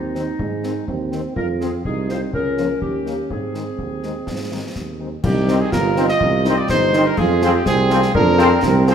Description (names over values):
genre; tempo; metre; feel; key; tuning
military-style march for wind band; 124 BPM; 2/4; straight; Ab major; A4 = 440 Hz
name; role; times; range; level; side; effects
clear woodwind section; second line; 0.0-8.8 s; Eb4 to Eb5; -26 LUFS; left 4 dB; none
warm euphonium; second line; 0.0-8.9 s; Ab3 to F4; -24 LUFS; right 6 dB; none
warm tuba; bass; 0.0-8.9 s; G1 to Ab2; -21 LUFS; right 2 dB; none
mellow French horn section; accompaniment; 0.1-8.9 s; Eb3 to Ab4; -26 LUFS; left 5 dB; none
mellow cornet; melody; 0.2-8.8 s; C4 to Eb5; -22 LUFS; right 1 dB; none
concert snare drum, concert bass drum and clash cymbals; drums; 0.2-8.9 s; none; -26 LUFS; left 2 dB; none
bright trombone section; sustained chords; 5.5-8.9 s; Eb3 to C4; -23 LUFS; equal; none
room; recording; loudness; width
moderate scoring stage reverb, RT60 1.9 s; none; -16 LUFS; side -8 dB against mid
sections
0.0-5.2 A section; 5.2-8.9 B section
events
none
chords
0.0 Ab; 1.4 F5; 2.3 Bbm/Db; 2.8 Eb7; 3.3 Ab; 5.2 Cm; 7.2 Fm